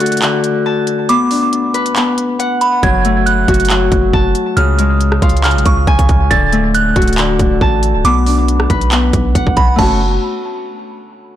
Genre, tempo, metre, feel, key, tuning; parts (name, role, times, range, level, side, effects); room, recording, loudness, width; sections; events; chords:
hip hop, trap; 138 BPM; 4/4; half-time; F# harmonic minor; A4 = 440 Hz
delicate synth tine bell; second line; 0.0-10.0 s; A5 to A6; -18 LUFS; right 4 dB; chorus, tape echo
Celtic harp; arpeggios; 0.0-10.0 s; C#3 to A5; -15 LUFS; left 3 dB; tape echo
trap drum kit; drums; 0.0-9.9 s; crash cymbal, handclaps, hi-hat, kick drum, rim click; -16 LUFS; equal
warm 808-style bass; bass; 2.8-10.2 s; C#1 to C#2; -15 LUFS; right 1 dB
little or no reverb; blown-out, overdriven recording, overdrive; -10 LUFS; side -11 dB against mid
0.0-9.8 A section; 9.8-11.4 B section
break 0.0-2.8
0.0 D; 1.1 Bm; 2.8 F#m; 4.6 C#; 6.3 D; 8.0 Bm; 9.8 F#m